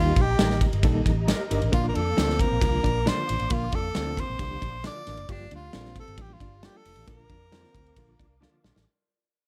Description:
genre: uptempo 1960s-style soul.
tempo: 134 BPM.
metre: 4/4.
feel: straight.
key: Bb major.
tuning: A4 = 440 Hz.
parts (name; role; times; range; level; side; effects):
breathy tenor saxophone; melody; 0.0-8.4 s; D4 to D5; -33 LUFS; equal; none.
overdriven reed electric piano; accompaniment; 0.0-8.7 s; D3 to Eb5; -34 LUFS; equal; tremolo.
mellow tonewheel organ; sustained chords; 0.0-8.8 s; Bb3 to D6; -41 LUFS; equal; fast rotary speaker, chorus vibrato.
vintage muted fingered electric bass; bass; 0.0-8.8 s; F1 to F2; -31 LUFS; equal; none.
natural country drum kit; drums; 0.2-8.9 s; hi-hat, kick drum, ride cymbal, snare drum; -29 LUFS; equal; none.
electric guitar through a small old amp; stabs; 0.4-8.7 s; D4 to Eb5; -39 LUFS; equal; spring reverb.
hollow-body jazz guitar; riff; 1.7-8.8 s; Bb3 to G4; -38 LUFS; equal; none.
room: little or no reverb.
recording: none.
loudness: -25 LUFS.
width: mono.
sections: 0.0-8.9 A section.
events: fade-out 0.0-8.9; drum fill 8.4-8.9.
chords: 0.0 Eb; 1.7 Bb; 5.3 Gm7; 7.1 Bb.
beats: 0.39 0.83 1.28 | 1.73 2.17 2.62 3.06 | 3.51 3.95 4.40 4.85 | 5.29 5.74 6.18 6.63 | 7.08 7.52 7.97 8.42.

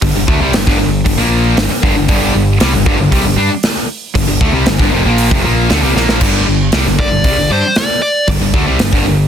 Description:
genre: hard rock.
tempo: 116 BPM.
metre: 4/4.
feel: straight.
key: G minor.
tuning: A4 = 440 Hz.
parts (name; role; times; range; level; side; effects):
distorted electric guitar; riff; 0.0-6.2 s; F2 to D4; -20 LUFS; equal; distortion.
high-gain distorted guitar; riff; 0.0-9.3 s; F2 to D4; -17 LUFS; left 12 dB; distortion.
high-gain distorted guitar; riff; 0.0-9.3 s; F2 to D4; -17 LUFS; right 9 dB; distortion.
growling picked electric bass; bass; 0.0-9.3 s; F1 to G2; -16 LUFS; equal; overdrive.
gated 80s drum kit; drums; 0.0-9.0 s; crash cymbal, hi-hat, kick drum, snare drum; -15 LUFS; equal; none.
dark smooth lead guitar; melody; 7.0-8.3 s; C5 to D5; -14 LUFS; equal; overdrive, digital delay.
room: light reverb.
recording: dense, heavily limited modern master.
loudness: -10 LUFS.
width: side -8 dB against mid.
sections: 0.0-6.2 A section; 6.2-9.3 B section.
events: drum fill 6.0; lead electric guitar solo 6.2-9.3.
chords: 0.0 Gm; 6.2 G5.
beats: | 0.02 0.54 1.05 1.57 | 2.08 2.60 3.12 3.63 | 4.15 4.66 5.18 5.70 | 6.21 6.73 7.25 7.76 | 8.28 8.80.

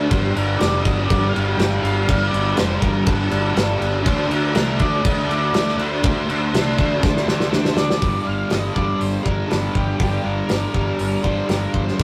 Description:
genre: rock, shoegaze and dream pop.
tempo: 121 BPM.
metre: 4/4.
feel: straight.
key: G minor.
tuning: A4 = 442 Hz.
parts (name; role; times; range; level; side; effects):
fuzz guitar; riff; 0.0-12.0 s; G2 to D4; -24 LUFS; equal; distortion.
fuzz fingered electric bass; bass; 0.0-12.0 s; F1 to D2; -26 LUFS; equal; overdrive.
octave-fuzz lead guitar; melody; 0.1-12.0 s; G4 to G5; -30 LUFS; equal; distortion.
loose indie drum kit; drums; 0.1-12.0 s; crash cymbal, hi-hat, kick drum, snare drum; -24 LUFS; equal; none.
room: moderate booth ambience, RT60 0.3 s.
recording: rough rehearsal-room recording.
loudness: -20 LUFS.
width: mono.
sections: 0.0-8.0 A section; 8.0-12.0 B section.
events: drum fill 7.0-8.0.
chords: 0.1 G5; 4.1 D5; 8.0 Gm.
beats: | 0.10 0.60 1.09 1.58 | 2.08 2.57 3.06 3.56 | 4.05 4.55 5.04 5.54 | 6.03 6.53 7.02 7.52 | 8.01 8.51 9.00 9.50 | 10.00 10.49 10.99 11.49 | 11.99.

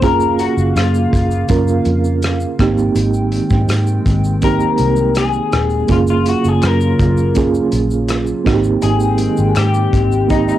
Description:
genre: indie pop, bedroom pop.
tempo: 82 BPM.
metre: 4/4.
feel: straight.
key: Ab major.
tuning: A4 = 441 Hz.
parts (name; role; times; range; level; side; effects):
electric guitar through a small old amp; accompaniment; 0.0-10.5 s; Eb4 to Bb4; -20 LUFS; left 8 dB; lush chorus, vibrato effect, cassette tape.
mellow reed electric piano; accompaniment; 0.0-10.6 s; Bb3 to Bb4; -17 LUFS; right 5 dB; fast tremolo, cassette tape.
hollow soft pad; sustained chords; 0.0-10.6 s; Db3 to G5; -22 LUFS; equal; chorus, cassette tape.
vintage muted fingered electric bass; bass; 0.0-10.5 s; Eb1 to Ab2; -17 LUFS; equal; none.
loose indie drum kit; drums; 0.0-10.6 s; hi-hat, kick drum, rim click, shaker; -20 LUFS; equal; cassette tape.
group handclap; percussion; 6.6-9.7 s; none; -31 LUFS; left 8 dB; none.
room: moderate studio ambience, RT60 0.5 s.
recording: home recording on cassette.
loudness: -12 LUFS.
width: side -12 dB against mid.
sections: 0.0-10.6 A section.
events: clean electric guitar solo 0.0-10.6.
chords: 0.0 Gbmaj7; 2.6 Abmaj7; 5.9 Gbmaj7; 8.5 Abmaj7.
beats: | 0.03 0.76 1.50 2.23 | 2.96 3.70 4.43 5.17 | 5.90 6.63 7.37 8.10 | 8.83 9.57 10.30.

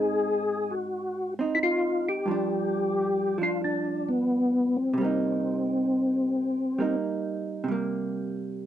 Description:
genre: jazz.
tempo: 89 BPM.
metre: 4/4.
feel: swing 69% on 8ths.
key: C minor.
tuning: A4 = 440 Hz.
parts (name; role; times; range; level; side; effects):
percussive tonewheel organ; melody; 0.0-7.0 s; B3 to Ab4; -25 LUFS; left 2 dB; slow rotary speaker, chorus vibrato.
vintage hollow-body jazz guitar; accompaniment; 0.0-8.7 s; G2 to Eb4; -30 LUFS; right 3 dB; none.
room: wet booth ambience, RT60 0.2 s.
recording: dry, close 1970s-style studio recording.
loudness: -25 LUFS.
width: side -11 dB against mid.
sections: 0.0-7.7 A section.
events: none.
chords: 0.0 Ab7; 2.3 G7; 5.0 Cm7; 7.7 C5.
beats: 0.24 0.92 1.59 | 2.27 2.94 3.62 4.30 | 4.97 5.65 6.33 7.00 | 7.68 8.36.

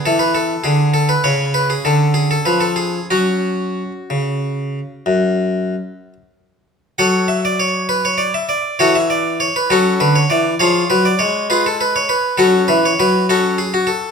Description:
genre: classical, baroque-style suite movement for harpsichord.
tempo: 59-70 BPM (dotted quarters).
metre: 12/8.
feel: rubato.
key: F# minor.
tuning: A4 = 440 Hz.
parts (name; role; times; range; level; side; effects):
harpsichord; solo; 0.0-14.1 s; F#2 to F#5; -14 LUFS; equal; none.
room: wet stone room reverb, RT60 1.3 s.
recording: none.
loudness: -14 LUFS.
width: side -6 dB against mid.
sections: 0.0-7.0 A section; 7.0-14.1 B section.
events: none.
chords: 0.0 Bm; 1.2 C#; 3.1 F#5; 7.0 F#m; 10.6 Fdim; 12.4 F#5.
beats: 0.35 1.25 2.16 | 3.11 4.11 5.08 6.03 | 6.98 7.89 8.80 9.71 | 10.60 11.51 12.40 13.29.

